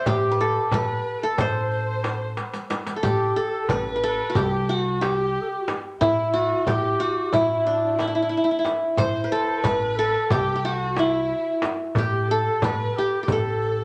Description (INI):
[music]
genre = Turkish makam ensemble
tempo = 182 BPM (eighths)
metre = 9/8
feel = straight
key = A makam huseyni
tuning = A4 = 439 Hz
[part]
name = qanun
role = melody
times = 0.0-13.8 s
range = D4 to F#5-30c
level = -26 LUFS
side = equal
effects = none
[part]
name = breathy mellow low ney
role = second line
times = 0.0-13.8 s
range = D4 to C5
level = -31 LUFS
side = equal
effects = none
[part]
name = dark chamber violin section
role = second line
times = 0.0-13.8 s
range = D4 to C5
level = -37 LUFS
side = equal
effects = none
[part]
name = upright bass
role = bass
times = 0.1-13.8 s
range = A1 to A2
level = -32 LUFS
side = equal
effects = none
[part]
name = darbuka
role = percussion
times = 0.1-13.7 s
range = none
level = -32 LUFS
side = equal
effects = none
[part]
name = frame drum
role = percussion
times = 0.1-13.4 s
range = none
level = -32 LUFS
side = equal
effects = none
[part]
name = riq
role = percussion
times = 0.1-13.7 s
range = none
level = -42 LUFS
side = equal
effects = none
[sound]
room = wet studio reverb, RT60 0.8 s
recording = none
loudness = -23 LUFS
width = mono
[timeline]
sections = 0.0-13.8 A section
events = drum fill 2.4-3.0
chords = none